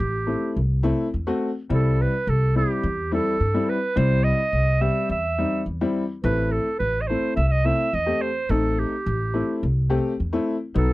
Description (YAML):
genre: klezmer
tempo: 106 BPM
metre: 4/4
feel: straight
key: A minor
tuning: A4 = 440 Hz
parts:
  - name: bright clarinet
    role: melody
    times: 0.0-10.9 s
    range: G4 to E5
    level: -25 LUFS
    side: right 2 dB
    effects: none
  - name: upright bass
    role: bass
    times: 0.0-10.9 s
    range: A1 to G2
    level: -23 LUFS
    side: equal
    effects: none
  - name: clear upright piano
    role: accompaniment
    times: 0.3-10.9 s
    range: F#3 to G4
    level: -25 LUFS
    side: left 2 dB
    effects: none
room: little or no reverb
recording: dry, close 1970s-style studio recording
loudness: -20 LUFS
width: side -18 dB against mid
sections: 0.0-10.9 A section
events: none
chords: 0.0 Am; 1.7 C; 6.2 Am